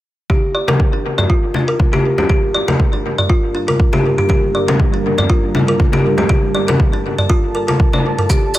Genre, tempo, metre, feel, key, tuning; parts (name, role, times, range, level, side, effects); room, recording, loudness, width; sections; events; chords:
afro house; 120 BPM; 4/4; swing 55% on 16ths; G minor; A4 = 438 Hz
dark analog pad; sustained chords; 3.1-8.6 s; G2 to A5; -22 LUFS; right 1 dB; chorus, sidechain pumping
kalimba; arpeggios; 0.3-8.6 s; D4 to D5; -18 LUFS; equal; sidechain pumping, low-pass filter, analog delay
electronic kick drum; drums; 0.3-8.4 s; -15 LUFS; equal
congas; percussion; 0.3-8.4 s; -19 LUFS; left 2 dB; analog delay
electronic toms; drums; 1.2-8.3 s; -20 LUFS; right 1 dB
maracas; percussion; 8.3-8.6 s; -21 LUFS; right 3 dB
moderate plate reverb, RT60 1.1 s, small room ambience; echo-heavy mix; -13 LUFS; side -15 dB against mid
0.3-8.6 A section
0.3 Gmadd9